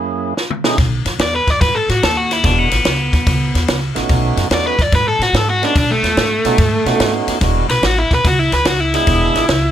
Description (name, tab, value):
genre	electric blues shuffle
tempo	145 BPM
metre	4/4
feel	swing 67% on 8ths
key	B mixolydian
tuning	A4 = 437 Hz
part	tonewheel organ	accompaniment	0.0-9.5 s	F#2 to G#4	-20 LUFS	right 4 dB	slow rotary speaker, overdrive
part	compact cocktail drum kit	drums	0.4-9.6 s	kick drum, ride cymbal, snare drum, toms	-17 LUFS	equal	none
part	upright bass	bass	0.8-9.7 s	E1 to B2	-19 LUFS	equal	none
part	crunchy overdriven guitar	melody	1.2-9.7 s	A3 to D5	-16 LUFS	left 1 dB	none
room	light reverb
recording	none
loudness	-13 LUFS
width	side -10 dB against mid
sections	0.8-9.7 A section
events	break 0.0-0.8; drum fill 0.4-0.8; overdriven electric guitar solo 0.8-9.7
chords	0.0 F#7; 0.8 B; 2.4 E7; 4.1 B7; 7.4 E7